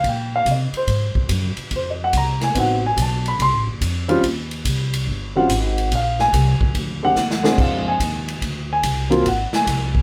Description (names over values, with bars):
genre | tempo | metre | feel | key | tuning
jazz, small-group swing and bop | 143 BPM | 4/4 | swing 67% on 8ths | unclear | A4 = 441 Hz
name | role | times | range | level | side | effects
dark grand piano | accompaniment | 0.0-10.0 s | Gb3 to C6 | -22 LUFS | equal | none
upright bass | bass | 0.0-10.0 s | F#1 to C3 | -25 LUFS | equal | none
swinging big-band drum kit | drums | 0.0-10.0 s | crash cymbal, hi-hat, kick drum, ride cymbal, snare drum | -26 LUFS | equal | none
room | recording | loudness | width
moderate studio reverb, RT60 0.5 s | band playing live in one room | -20 LUFS | mono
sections
0.0-10.0 A section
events
drum fill 7.2-7.6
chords
0.0 Eb69; 0.9 Ab6; 2.6 Adim7; 4.2 Eb6; 5.9 Bb9; 9.3 Ab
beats
0.04 0.46 | 0.88 1.30 1.72 2.14 | 2.56 2.97 3.39 3.81 | 4.23 4.65 5.07 5.49 | 5.91 6.33 6.74 7.16 | 7.58 8.00 8.42 8.84 | 9.25 9.67